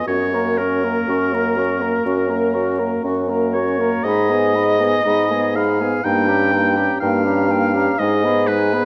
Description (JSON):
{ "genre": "classical, slow romantic movement for wind quintet", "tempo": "61 BPM", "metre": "4/4", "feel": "rubato", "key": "F# major", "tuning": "A4 = 440 Hz", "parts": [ { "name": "silver concert flute", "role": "melody", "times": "0.0-8.8 s", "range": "G5 to C#6", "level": "-30 LUFS", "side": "equal", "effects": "none" }, { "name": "clear oboe", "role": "second line", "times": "0.0-8.8 s", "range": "A#4 to G5", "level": "-23 LUFS", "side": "equal", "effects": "none" }, { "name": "bright clarinet", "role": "accompaniment", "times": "0.0-8.8 s", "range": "D#4 to A#4", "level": "-28 LUFS", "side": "equal", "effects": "none" }, { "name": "warm French horn", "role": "accompaniment", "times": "0.0-8.8 s", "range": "G#3 to C#4", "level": "-26 LUFS", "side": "equal", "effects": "none" }, { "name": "mellow bassoon", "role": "bass", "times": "0.1-8.8 s", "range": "F#2 to G#2", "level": "-22 LUFS", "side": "equal", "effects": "none" } ], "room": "wet recital hall reverb, RT60 1.6 s", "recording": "dark, warm production, vinyl crackle", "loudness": "-18 LUFS", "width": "mono", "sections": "0.0-8.8 A section", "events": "none", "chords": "0.1 F#; 4.0 G#m; 6.1 D#7/G; 8.0 G#m", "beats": "| 0.07 1.09 2.06 3.04 | 4.04 5.06 6.05 7.02 | 8.00" }